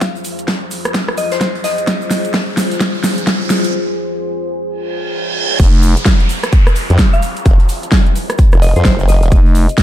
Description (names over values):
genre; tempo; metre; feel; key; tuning
bass house; 129 BPM; 4/4; swing 61% on 16ths; F minor; A4 = 439 Hz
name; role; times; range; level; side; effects
deep dark ambient pad; sustained chords; 0.0-9.8 s; F3 to C5; -24 LUFS; left 1 dB; chorus, built-in reverb, sidechain pumping
big-room dance drum kit; drums; 0.0-9.8 s; crash cymbal, hi-hat, rim click, snare drum; -17 LUFS; equal; overdrive, small room ambience
electronic kick drum; drums; 0.0-9.8 s; none; -11 LUFS; equal; overdrive, high-pass filter on kick, small room ambience
street-band drum kit; drums; 0.0-9.8 s; hi-hat, snare drum; -31 LUFS; left 2 dB; sidechain pumping on hats, high-pass filter on hats, small room ambience, high-pass filter on snare, high-pass filter on room
egg shaker; percussion; 0.0-9.8 s; none; -33 LUFS; right 6 dB; none
riser, reverse cymbal and downlifter; sound effects; 0.9-9.3 s; none; -24 LUFS; right 3 dB; none
soft synth bell; melody; 1.2-2.3, 7.1-9.7 s; C5 to F5; -22 LUFS; left 3 dB; chorus, ping-pong delay
growling FM bass; bass; 5.6-5.9, 9.3-9.7 s; F1; -12 LUFS; equal; overdrive, sidechain pumping
formant-sweep wobble bass; bass; 6.9-9.3 s; F1 to F2; -11 LUFS; equal; chorus, sidechain pumping
room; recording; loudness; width
light reverb, small room reverb; dark, warm production; -12 LUFS; side -12 dB against mid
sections
0.0-5.6 A section; 5.6-9.8 B section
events
build-up 0.0-5.6; drum fill 0.0-3.7; riser 0.9-3.7; break 3.7-5.6; reverse cymbal 4.9-5.6; drop 5.6-9.8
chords
0.0 Fm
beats
| 0.01 0.48 0.94 1.41 | 1.88 2.34 2.81 3.27 | 3.74 4.20 4.67 5.13 | 5.60 6.06 6.53 6.99 | 7.46 7.92 8.39 8.85 | 9.32 9.78